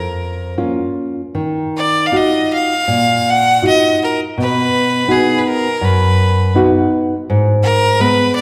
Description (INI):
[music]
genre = fado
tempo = 81 BPM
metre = 4/4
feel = rubato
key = Eb harmonic minor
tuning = A4 = 443 Hz
[part]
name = bright fiddle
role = melody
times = 0.0-8.4 s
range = Ab4 to Gb5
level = -18 LUFS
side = equal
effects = none
[part]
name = nylon-string guitar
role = accompaniment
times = 0.0-8.4 s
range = F2 to Gb4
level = -17 LUFS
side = equal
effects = none
[sound]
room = wet concert hall reverb, RT60 1.8 s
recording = recorded in a church or concert hall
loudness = -15 LUFS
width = mono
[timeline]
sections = 0.0-1.4 A section; 1.4-8.4 B section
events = none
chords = 0.0 Bbm; 1.4 Ebmadd9; 4.4 B; 7.3 Abm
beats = 0.58 | 1.36 2.12 2.88 3.63 | 4.37 5.10 5.82 6.55 | 7.28 8.00